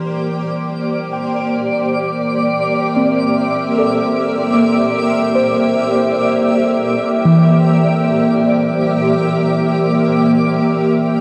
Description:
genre	ambient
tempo	free time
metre	none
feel	none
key	Bb lydian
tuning	A4 = 440 Hz
part	granular cloud pad	sustained chords	0.0-11.2 s	Bb3 to E5	-18 LUFS	equal	built-in reverb
part	muted felt-like synth keys	arpeggios	0.0-11.2 s	E3 to G5	-20 LUFS	equal	chorus, analog delay
part	twinkling granular texture	texture	0.2-11.2 s	D5	-24 LUFS	equal	built-in reverb
room	wet lush hall reverb, RT60 2.7 s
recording	dreamy mix soaked in reverb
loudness	-15 LUFS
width	mono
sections	0.0-11.2 A section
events	none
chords	0.0 Bb69

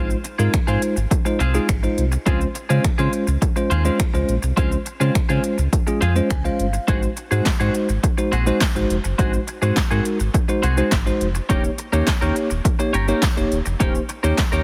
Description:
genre	dance-pop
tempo	104 BPM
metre	4/4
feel	straight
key	Ab major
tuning	A4 = 439 Hz
part	bell-like tine electric piano	accompaniment	0.0-14.6 s	Ab3 to Ab5	-25 LUFS	equal	sidechain pumping
part	twelve-string electric guitar	riff	0.0-14.6 s	C4 to Bb4	-30 LUFS	equal	lush chorus
part	sub bass with octave	bass	0.0-14.6 s	Eb1 to Db3	-23 LUFS	equal	sidechain pumping
part	deep house drum kit	drums	0.1-14.6 s	finger snaps, handclaps, hi-hat, kick drum, shaker, snare drum	-23 LUFS	equal	none
part	tambourine	percussion	7.5-14.5 s	none	-41 LUFS	equal	none
room	little or no reverb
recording	heavily compressed radio sound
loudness	-20 LUFS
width	mono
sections	0.0-14.6 A section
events	tine electric piano fill 6.0-6.9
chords	0.0 Ab6; 2.3 Dbmaj7; 6.9 Ab7; 11.5 Eb7

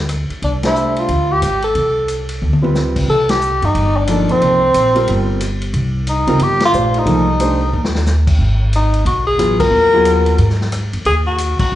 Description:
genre	modal jazz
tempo	181 BPM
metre	4/4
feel	swing 63% on 8ths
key	unclear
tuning	A4 = 436 Hz
part	upright bass	bass	0.0-11.8 s	G1 to Ab2	-17 LUFS	equal	none
part	vintage drum kit	drums	0.1-11.7 s	crash cymbal, hi-hat, kick drum, ride cymbal, rim click, snare drum, toms	-23 LUFS	left 1 dB	none
part	mellow tenor saxophone	melody	0.4-11.8 s	C4 to Bb4	-15 LUFS	left 1 dB	none
part	warm concert grand piano	accompaniment	0.6-10.4 s	F3 to D5	-20 LUFS	right 1 dB	none
room	wet large studio reverb, RT60 1.4 s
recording	heard from further back in the room, nothing above 10.3 kHz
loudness	-13 LUFS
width	side -13 dB against mid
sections	0.0-3.1 A section; 3.1-11.8 B section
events	band accent 0.6, 3.3, 6.6, 9.6, 11.6; drum fill 2.4-2.8, 7.7-8.1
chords	0.0 G9sus4; 3.1 Cm9; 8.4 Abm9

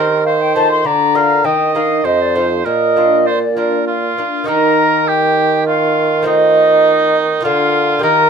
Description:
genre	classical, baroque-style sonata movement with continuo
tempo	101 BPM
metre	3/4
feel	rubato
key	Bb major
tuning	A4 = 440 Hz
part	bright oboe	second line	0.0-8.3 s	Eb4 to F5	-18 LUFS	right 6 dB	none
part	lute	accompaniment	0.0-8.3 s	F2 to C5	-21 LUFS	left 1 dB	none
part	mellow bassoon	bass	0.0-8.3 s	F2 to Eb3	-17 LUFS	right 3 dB	none
part	silver concert flute	melody	0.2-8.3 s	C5 to C6	-14 LUFS	left 2 dB	none
room	light reverb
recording	minimal, uncompressed stereo recording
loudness	-11 LUFS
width	side -6 dB against mid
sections	0.0-4.5 A section; 4.5-8.3 A section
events	none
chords	0.3 F7/Eb; 0.9 Bb/D; 1.4 Eb; 2.0 F7; 2.7 Bb; 4.5 Eb; 6.3 F7/Eb; 7.4 Bb/D

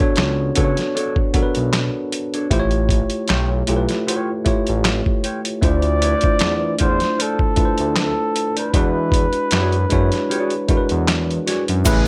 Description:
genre	R&B, neo-soul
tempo	77 BPM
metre	4/4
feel	swing 56% on 16ths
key	unclear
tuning	A4 = 439 Hz
part	mellow electric guitar	second line	0.0-11.6 s	D4 to D5	-28 LUFS	equal	none
part	tine electric piano	accompaniment	0.0-12.1 s	G#3 to C#5	-24 LUFS	equal	overdrive
part	boom bap sampler-style drum kit	drums	0.0-12.1 s	crash cymbal, handclaps, hi-hat, kick drum, snare drum	-22 LUFS	equal	none
part	smooth synth bass	bass	0.2-12.1 s	A1 to F#2	-24 LUFS	equal	none
part	breathy flugelhorn	melody	5.7-11.0 s	A4 to D5	-25 LUFS	equal	tape echo
part	string machine, violins	sustained chords	11.9-12.1 s	C#3 to G#5	-28 LUFS	equal	ensemble chorus
part	tube shaker	percussion	11.9-12.1 s	none	-30 LUFS	equal	none
room	light reverb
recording	none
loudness	-19 LUFS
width	mono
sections	0.0-11.9 A section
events	none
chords	0.0 Bm9; 2.5 A7b13; 5.6 Dm7; 8.7 E9

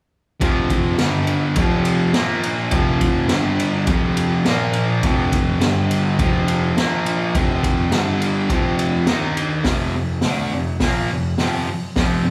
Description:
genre	garage rock duo or trio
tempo	104 BPM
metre	4/4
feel	straight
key	unclear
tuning	A4 = 437 Hz
part	fuzz guitar	riff	0.4-12.3 s	F2 to Eb4	-21 LUFS	equal	distortion
part	raw garage drum kit	drums	0.4-12.1 s	hi-hat, kick drum, ride cymbal, snare drum	-24 LUFS	equal	none
room	wet large studio reverb, RT60 1.3 s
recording	band playing live in one room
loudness	-19 LUFS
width	mono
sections	0.4-9.7 A section; 9.7-12.3 B section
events	none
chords	0.4 F5; 1.0 G5; 1.6 F5; 2.2 Bb5; 2.7 F5; 3.3 G5; 3.9 F5; 4.5 Bb5; 5.0 F5; 5.6 G5; 6.2 F5; 6.8 Bb5; 7.3 F5; 7.9 G5; 8.5 F5; 9.1 Eb5; 9.7 F5

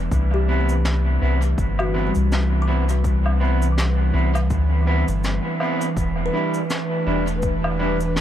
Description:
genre	ambient dub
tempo	82 BPM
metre	4/4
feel	swing 57% on 16ths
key	unclear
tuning	A4 = 440 Hz
part	airy breathy pad	sustained chords	0.0-8.2 s	E3 to B4	-26 LUFS	right 4 dB	chorus
part	kalimba	arpeggios	0.0-8.2 s	G3 to D6	-31 LUFS	left 5 dB	dub echo
part	soft dub sub bass	bass	0.0-8.2 s	E1 to D2	-20 LUFS	equal	tube saturation
part	cabasa, snare drum and woodblock	drums	0.1-8.2 s	none	-30 LUFS	equal	dub echo
part	electronic kick drum	drums	0.1-7.6 s	none	-25 LUFS	equal	overdrive
part	electric guitar at the edge of break-up	stabs	0.5-8.0 s	G3 to E4	-26 LUFS	right 1 dB	dub echo
room	light reverb, studio ambience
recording	none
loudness	-18 LUFS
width	side -11 dB against mid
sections	0.0-8.2 A section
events	none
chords	0.1 Cmaj7; 6.0 Em7

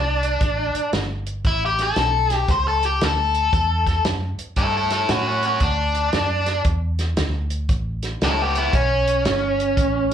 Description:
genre	electric blues shuffle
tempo	115 BPM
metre	4/4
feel	swing 65% on 8ths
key	A mixolydian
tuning	A4 = 438 Hz
part	biting overdriven guitar	melody	0.0-10.1 s	B3 to C5	-20 LUFS	left 1 dB	slapback echo
part	vintage muted fingered electric bass	bass	0.0-10.1 s	G1 to A2	-24 LUFS	equal	none
part	warm soul drum kit	drums	0.2-10.1 s	hi-hat, kick drum, snare drum	-24 LUFS	right 1 dB	none
room	light reverb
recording	live gig heard through the venue's PA, club reverb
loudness	-18 LUFS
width	side -9 dB against mid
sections	0.0-10.1 A section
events	overdriven electric guitar solo 0.0-10.1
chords	0.0 D5; 1.4 A9; 5.6 Dadd9; 7.7 A9

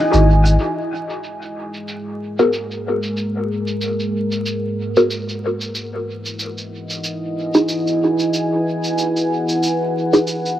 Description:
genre	ambient dub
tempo	93 BPM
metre	4/4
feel	swing 57% on 16ths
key	G# minor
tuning	A4 = 440 Hz
part	deep dark ambient pad	sustained chords	0.0-10.6 s	G#3 to G#5	-21 LUFS	equal	chorus, built-in reverb, cassette tape
part	warm sub bass	bass	0.1-0.6 s	G#1	-12 LUFS	equal	transformer saturation
part	shaker	drums	0.1-10.6 s	none	-28 LUFS	right 1 dB	overdrive, low-pass filter on perc, low-pass filter on snare, low-pass filter on room, dub echo
part	filtered dub chord stab	stabs	2.4-10.2 s	B3 to A#4	-19 LUFS	left 1 dB	phaser, cassette tape, dub echo
room	moderate spring reverb, RT60 2.6 s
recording	home recording on cassette, vinyl crackle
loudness	-17 LUFS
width	side -12 dB against mid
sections	0.6-10.6 A section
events	none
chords	0.0 Emaj9; 0.6 G#m9; 5.8 Emaj9

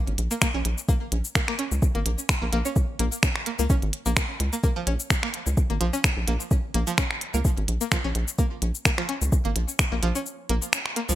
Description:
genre	minimal techno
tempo	128 BPM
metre	4/4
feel	swing 54% on 16ths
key	Bb minor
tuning	A4 = 440 Hz
part	rubbery square bass	bass	0.1-11.2 s	Ab1 to Db2	-25 LUFS	equal	sidechain pumping
part	minimal click drum kit	drums	0.1-11.2 s	finger snaps, hi-hat, shaker	-26 LUFS	equal	gated reverb
part	string-like resonator pluck	riff	0.3-11.1 s	F3 to Db4	-31 LUFS	equal	chorus, cassette tape, sidechain pumping, digital delay
part	electronic kick drum	drums	0.4-9.9 s	none	-23 LUFS	equal	none
room	digital ambience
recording	bright 1980s-style digital production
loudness	-22 LUFS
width	side -14 dB against mid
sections	0.0-11.2 A section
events	break 10.3-11.2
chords	0.0 Bbm

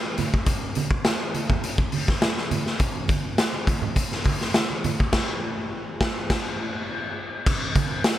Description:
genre	funk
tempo	103 BPM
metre	4/4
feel	straight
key	none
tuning	none
part	raw garage drum kit	drums	0.2-8.2 s	crash cymbal, hi-hat, kick drum, snare drum	-22 LUFS	equal	none
part	congas	percussion	0.2-7.9 s	none	-30 LUFS	right 6 dB	none
room	light reverb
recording	none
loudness	-22 LUFS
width	side -12 dB against mid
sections	0.0-7.5 A section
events	band accent 5.1-7.5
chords	none

